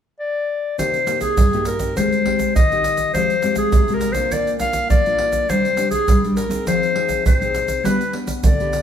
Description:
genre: samba and choro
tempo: 102 BPM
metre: 4/4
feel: straight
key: C minor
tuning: A4 = 439 Hz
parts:
  - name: clear clarinet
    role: melody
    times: 0.2-8.8 s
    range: Ab4 to F5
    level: -20 LUFS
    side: left 2 dB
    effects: none
  - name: nylon-string guitar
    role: accompaniment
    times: 0.8-8.8 s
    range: G2 to Ab4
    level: -22 LUFS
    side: left 2 dB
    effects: none
  - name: egg shaker, surdo and pandeiro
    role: percussion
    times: 0.8-8.8 s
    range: none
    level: -20 LUFS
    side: right 2 dB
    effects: none
room: moderate large studio reverb, RT60 1.1 s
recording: band playing live in one room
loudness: -16 LUFS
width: side -9 dB against mid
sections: 0.8-8.8 A section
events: none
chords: 0.0 N.C.; 0.8 Cm7; 2.0 Abmaj7; 3.1 Fmadd9; 4.3 Bb; 5.5 Csus2; 6.7 Fm7; 7.8 G

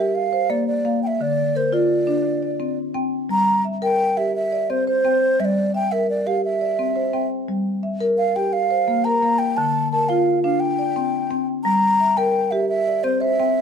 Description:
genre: southern african traditional, mbira-style interlocking cycle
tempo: 115 BPM (dotted quarters)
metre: 12/8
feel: straight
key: G dorian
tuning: A4 = 440 Hz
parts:
  - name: mellow hollow wooden flute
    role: melody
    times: 0.0-13.6 s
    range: C5 to Bb5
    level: -20 LUFS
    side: right 2 dB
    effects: plate reverb
  - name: marimba with medium mallets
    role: arpeggios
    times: 0.0-13.6 s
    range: D3 to G5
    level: -21 LUFS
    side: left 2 dB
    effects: none
room: moderate small room reverb, RT60 0.5 s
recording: dark, warm production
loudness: -18 LUFS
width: side -7 dB against mid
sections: 0.0-13.6 A section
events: none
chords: 0.2 Bb; 1.2 Dm; 2.3 C5; 3.3 Gm; 4.3 C; 5.4 Gm; 6.4 C; 7.5 Gm; 8.5 Bb5; 9.6 Dm; 10.6 C5; 11.7 Gm; 12.7 C

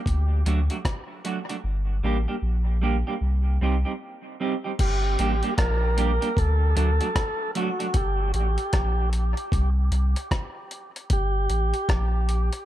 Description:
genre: dub reggae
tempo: 76 BPM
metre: 4/4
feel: swing 63% on 16ths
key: G harmonic minor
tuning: A4 = 440 Hz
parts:
  - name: warm sub bass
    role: bass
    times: 0.1-12.5 s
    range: G1 to D2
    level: -23 LUFS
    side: equal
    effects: none
  - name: dusty soul sampler-style drum kit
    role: drums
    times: 0.1-12.7 s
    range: crash cymbal, hi-hat, kick drum, rim click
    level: -27 LUFS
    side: equal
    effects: none
  - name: semi-hollow electric guitar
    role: accompaniment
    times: 0.5-7.9 s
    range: F#3 to G4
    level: -30 LUFS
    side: right 4 dB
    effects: wide subtle chorus, dub echo
  - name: tonewheel organ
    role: melody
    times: 4.8-11.9 s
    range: F#4 to Bb4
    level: -30 LUFS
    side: right 1 dB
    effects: overdrive, stopped rotary speaker, dub echo
room: digital ambience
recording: none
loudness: -22 LUFS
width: side -13 dB against mid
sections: 0.0-4.8 A section; 4.8-12.7 B section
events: break 0.0-4.8; part muted 1.6-4.8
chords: 0.1 D; 1.6 Gm; 3.2 Cm; 4.8 Gm; 6.4 D; 7.9 Gm; 9.5 N.C.; 11.1 Gm

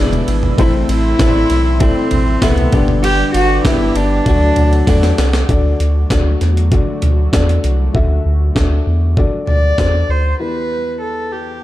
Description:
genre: piano-driven pop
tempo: 98 BPM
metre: 4/4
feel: straight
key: unclear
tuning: A4 = 440 Hz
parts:
  - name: warm cello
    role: melody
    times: 0.0-5.2, 9.5-11.6 s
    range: B3 to D5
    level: -18 LUFS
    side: equal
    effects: none
  - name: dark French horn section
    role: second line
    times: 0.0-5.2 s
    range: C3 to F#4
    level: -25 LUFS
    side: left 5 dB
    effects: ping-pong delay
  - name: dark upright piano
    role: accompaniment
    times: 0.0-11.6 s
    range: E2 to E5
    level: -21 LUFS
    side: left 4 dB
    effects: none
  - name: airy breathy pad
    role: sustained chords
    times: 0.0-10.4 s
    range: D3 to E6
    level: -28 LUFS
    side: left 1 dB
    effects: chorus
  - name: twelve-string electric guitar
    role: riff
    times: 0.0-5.5 s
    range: E2 to G4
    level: -25 LUFS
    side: right 6 dB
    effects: analog chorus
  - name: round analog bass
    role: bass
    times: 0.0-10.3 s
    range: E1 to E2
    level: -15 LUFS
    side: equal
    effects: none
  - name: breakbeat sampler-style drum kit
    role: drums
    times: 0.1-9.9 s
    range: hi-hat, kick drum, ride cymbal, snare drum, toms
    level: -17 LUFS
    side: equal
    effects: none
room: digital ambience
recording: dark, warm production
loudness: -12 LUFS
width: side -15 dB against mid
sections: 0.0-5.5 A section; 5.5-10.4 B section; 10.4-11.6 C section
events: drum fill 4.9-5.5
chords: 0.0 E7; 0.6 Am; 2.7 G; 4.3 D; 10.4 Em

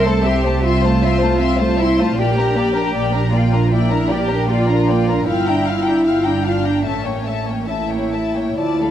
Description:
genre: classical, slow romantic movement for string orchestra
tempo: 65-80 BPM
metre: 4/4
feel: rubato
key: unclear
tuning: A4 = 440 Hz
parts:
  - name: dark studio violin section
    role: melody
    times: 0.0-8.9 s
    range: F5 to C6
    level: -27 LUFS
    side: left 7 dB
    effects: none
  - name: warm studio violin section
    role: second line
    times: 0.0-8.9 s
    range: A4 to G5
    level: -23 LUFS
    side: left 5 dB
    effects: none
  - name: dark symphonic viola section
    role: accompaniment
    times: 0.0-8.9 s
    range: F3 to F4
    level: -22 LUFS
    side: right 1 dB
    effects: none
  - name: warm symphonic cello section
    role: bass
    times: 0.0-8.9 s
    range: C#4 to A4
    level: -20 LUFS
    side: right 1 dB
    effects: none
  - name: warm symphonic double bass section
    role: bass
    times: 0.0-8.9 s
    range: G1 to D2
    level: -20 LUFS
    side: right 2 dB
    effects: none
room: wet scoring stage reverb, RT60 1.6 s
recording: dark, warm production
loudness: -15 LUFS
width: side -10 dB against mid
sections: 0.0-8.9 A section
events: none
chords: 0.0 Am/C; 2.2 Gm/Bb; 5.3 Gm7; 6.9 A7b9

